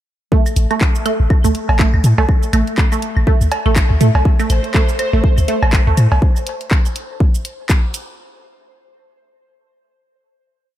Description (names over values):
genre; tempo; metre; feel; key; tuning
minimal techno; 122 BPM; 4/4; swing 58% on 16ths; A minor; A4 = 441 Hz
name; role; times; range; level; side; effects
resonant blip pluck; riff; 0.3-5.9 s; A3; -20 LUFS; right 3 dB; phaser, sidechain pumping, analog delay
electronic kick drum; drums; 0.3-7.8 s; none; -14 LUFS; equal; small room ambience
house drum kit; drums; 0.5-8.1 s; handclaps, hi-hat, shaker; -24 LUFS; equal; small room ambience
claves and cowbell; percussion; 0.5-6.2 s; none; -25 LUFS; right 2 dB; small room ambience, ping-pong delay
punchy sub bass; bass; 0.6-6.2 s; A1 to A2; -14 LUFS; equal; sidechain pumping
pulsing gated texture; texture; 4.5-6.2 s; C5; -26 LUFS; equal; chorus, built-in reverb, sidechain pumping
room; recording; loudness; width
light reverb; none; -13 LUFS; side -13 dB against mid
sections
0.3-8.2 drop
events
drop 0.3-8.2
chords
none